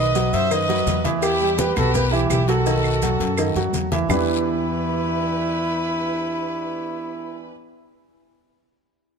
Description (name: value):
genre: latin, Cuban son and guajira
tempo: 168 BPM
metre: 4/4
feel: straight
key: E minor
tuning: A4 = 443 Hz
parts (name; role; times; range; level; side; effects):
- trumpet with bucket mute; melody; 0.0-7.5 s; E4 to E5; -25 LUFS; equal; none
- rich chamber violin section; second line; 0.0-7.5 s; E4 to C5; -29 LUFS; equal; none
- warm baby grand piano; arpeggios; 0.0-7.5 s; D#3 to B5; -24 LUFS; right 3 dB; none
- upright bass; bass; 0.0-7.5 s; B1 to F#2; -26 LUFS; equal; none
- congas; percussion; 0.2-4.2 s; none; -29 LUFS; left 4 dB; none
- cowbell and bongos; percussion; 0.2-4.2 s; none; -31 LUFS; left 11 dB; none
- guiro; percussion; 0.2-4.2 s; none; -36 LUFS; left 8 dB; none
- maracas; percussion; 0.2-4.2 s; none; -35 LUFS; right 8 dB; none
- claves; percussion; 0.5-4.2 s; none; -31 LUFS; right 6 dB; none
room: light reverb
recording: none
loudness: -19 LUFS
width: side -6 dB against mid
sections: 0.0-4.1 A section; 4.1-7.0 B section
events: none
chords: 0.0 B; 1.2 Em; 2.7 B7; 4.1 Em7